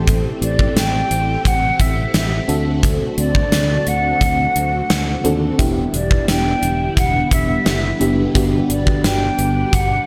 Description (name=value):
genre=1980s-style pop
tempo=87 BPM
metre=4/4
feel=straight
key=E minor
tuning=A4 = 437 Hz
part: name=FM electric piano with tremolo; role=accompaniment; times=0.0-10.1 s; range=B3 to A4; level=-25 LUFS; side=equal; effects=phaser, slapback echo
part: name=string machine, full ensemble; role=sustained chords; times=0.0-10.1 s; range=D3 to G4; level=-28 LUFS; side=equal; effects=phaser, ensemble chorus
part: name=fingered electric bass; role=bass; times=0.0-10.0 s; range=E1 to D#2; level=-24 LUFS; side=equal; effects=none
part: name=gated 80s drum kit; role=drums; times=0.1-9.9 s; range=hi-hat, kick drum, snare drum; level=-21 LUFS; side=equal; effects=none
part: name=mellow concert flute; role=melody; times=0.4-10.1 s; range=D5 to G5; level=-24 LUFS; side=equal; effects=none
room=moderate scoring stage reverb, RT60 2.0 s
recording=big arena sound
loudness=-17 LUFS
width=mono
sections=0.0-10.1 A section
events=none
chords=0.0 Am7; 2.5 D7; 5.6 Em7; 8.3 Gmaj7